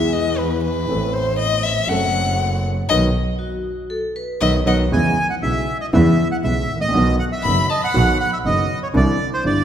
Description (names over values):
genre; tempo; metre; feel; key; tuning
tango; 119 BPM; 4/4; rubato; E major from 4.9 s; A4 = 439 Hz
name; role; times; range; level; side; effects
warm violin; second line; 0.0-8.3 s; B4 to B5; -22 LUFS; left 5 dB; none
dark concert grand piano; accompaniment; 0.0-9.6 s; F#1 to A4; -21 LUFS; equal; none
clear double bass; bass; 0.0-9.6 s; F#1 to E2; -21 LUFS; right 1 dB; none
vibraphone with hard mallets; second line; 3.4-4.9 s; F#4 to D#5; -28 LUFS; left 1 dB; none
bandoneon; melody; 4.4-9.6 s; C5 to G#5; -22 LUFS; right 2 dB; none
room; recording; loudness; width
moderate concert hall reverb, RT60 2.4 s; recorded in a church or concert hall; -16 LUFS; side -9 dB against mid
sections
0.0-4.9 A section; 4.9-9.6 B section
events
violin solo 0.0-4.9; band accent 2.9-4.9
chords
0.0 E; 0.9 Amadd9; 1.9 F#dim; 2.9 B; 4.9 E6; 6.9 B; 8.9 Cadd9